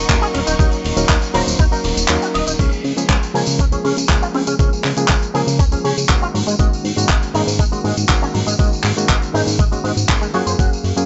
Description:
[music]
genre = nu-disco, nu disco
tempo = 120 BPM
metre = 4/4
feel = straight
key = Db major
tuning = A4 = 440 Hz
[part]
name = barky reed electric piano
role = accompaniment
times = 0.0-11.1 s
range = Eb3 to F5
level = -24 LUFS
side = equal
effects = medium tremolo, sidechain pumping, low-pass filter, analog delay
[part]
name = bright studio string section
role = sustained chords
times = 0.0-2.6 s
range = Bb4 to Db6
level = -31 LUFS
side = equal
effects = sidechain pumping
[part]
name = chorused synth bass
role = bass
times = 0.0-11.0 s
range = Eb1 to Db3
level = -23 LUFS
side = equal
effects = none
[part]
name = electronic kick drum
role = drums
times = 0.1-10.7 s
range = none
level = -18 LUFS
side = equal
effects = none
[part]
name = tight funk drum kit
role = drums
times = 0.1-11.1 s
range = crash cymbal, handclaps, hi-hat, ride cymbal, tambourine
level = -24 LUFS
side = equal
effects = none
[part]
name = electric guitar with an envelope filter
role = riff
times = 0.2-10.7 s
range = Gb3 to Eb5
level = -27 LUFS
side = equal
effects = ensemble chorus, low-pass filter
[sound]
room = light reverb, studio reverb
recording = dry, gritty hardware recording, nothing above 7.9 kHz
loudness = -17 LUFS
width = mono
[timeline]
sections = 0.0-2.6 A section; 2.6-11.1 B section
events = drop 0.0-2.6; kick drops out 2.1-2.6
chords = 0.0 Ebm7; 2.6 Db6; 6.3 Ab9sus4; 10.3 Gbmaj9

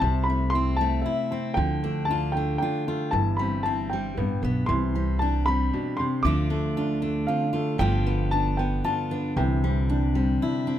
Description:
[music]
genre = acoustic folk duo or small band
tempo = 116 BPM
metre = 3/4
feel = straight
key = C major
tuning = A4 = 440 Hz
[part]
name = dark upright piano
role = melody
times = 0.0-10.4 s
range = E5 to D6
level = -29 LUFS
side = left 1 dB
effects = none
[part]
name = fingerpicked steel-string acoustic guitar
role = accompaniment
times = 0.0-10.8 s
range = G2 to F4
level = -27 LUFS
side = left 3 dB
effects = none
[part]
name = felt-muted upright piano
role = arpeggios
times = 0.0-10.8 s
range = E3 to E4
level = -31 LUFS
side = right 4 dB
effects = none
[part]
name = upright bass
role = bass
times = 0.0-10.4 s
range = G1 to D2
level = -27 LUFS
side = right 1 dB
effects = none
[sound]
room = light reverb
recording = close, detailed microphones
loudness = -23 LUFS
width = side -11 dB against mid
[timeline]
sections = 0.0-10.8 A section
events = none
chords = 0.0 Am/C; 1.6 Dm; 3.1 C/G; 4.2 Gadd9; 4.7 Cadd9; 6.2 Dm; 7.8 G7; 9.4 Cadd9

